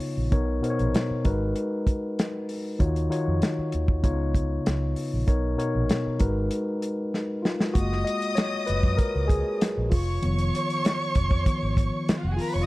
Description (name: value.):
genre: lush 1970s-style soul.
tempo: 97 BPM.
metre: 4/4.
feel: straight.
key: unclear.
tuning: A4 = 440 Hz.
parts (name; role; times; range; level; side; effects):
mellow tine electric piano; accompaniment; 0.0-12.7 s; B2 to Eb5; -27 LUFS; left 1 dB; none.
warm soul drum kit; drums; 0.0-12.5 s; hi-hat, kick drum, snare drum; -25 LUFS; equal; none.
vintage muted fingered electric bass; bass; 0.2-12.7 s; F1 to Gb2; -27 LUFS; equal; none.
warm studio violin section; second line; 7.7-12.7 s; F4 to Eb6; -30 LUFS; equal; none.
room: small room ambience.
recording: dark, warm production.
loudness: -23 LUFS.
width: side -19 dB against mid.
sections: 0.0-7.8 A section; 7.8-12.7 B section.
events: drum fill 7.1-7.8; tine electric piano solo 7.8-12.7.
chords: 0.3 Bmaj7; 1.3 Abm7; 2.8 Ebm7; 4.0 Db7; 5.3 Bmaj7; 6.2 Abm7; 7.8 Gbmaj9; 9.9 Db7/F.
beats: | 0.32 0.94 1.56 2.18 | 2.80 3.42 4.04 4.66 | 5.28 5.90 6.52 7.14 | 7.76 8.37 8.99 9.61 | 10.23 10.85 11.47 12.08.